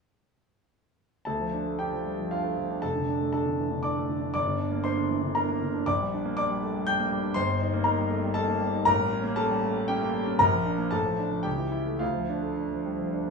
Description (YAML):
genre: classical, virtuoso piano study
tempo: 118 BPM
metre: 3/4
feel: rubato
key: D minor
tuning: A4 = 438 Hz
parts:
  - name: clear concert grand piano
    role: solo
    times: 1.3-13.3 s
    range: F1 to G6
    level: -25 LUFS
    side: equal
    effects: none
room: moderate stone room reverb, RT60 1.2 s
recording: studio reverb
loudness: -25 LUFS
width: side -4 dB against mid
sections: 1.3-13.3 A section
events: none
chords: 1.3 Dm; 2.8 Dm/F; 4.3 Gm; 5.9 Gm/Bb; 7.4 Eb/G; 8.9 A7b9; 10.4 Bb; 10.9 Dm/A; 11.5 A7/C#; 12.0 Dm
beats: | 1.26 1.79 2.31 | 2.82 3.33 3.84 | 4.34 4.85 5.35 | 5.86 6.36 6.86 | 7.36 7.86 8.37 | 8.88 9.37 9.88 | 10.40 10.92 11.45 | 12.00 12.57 13.13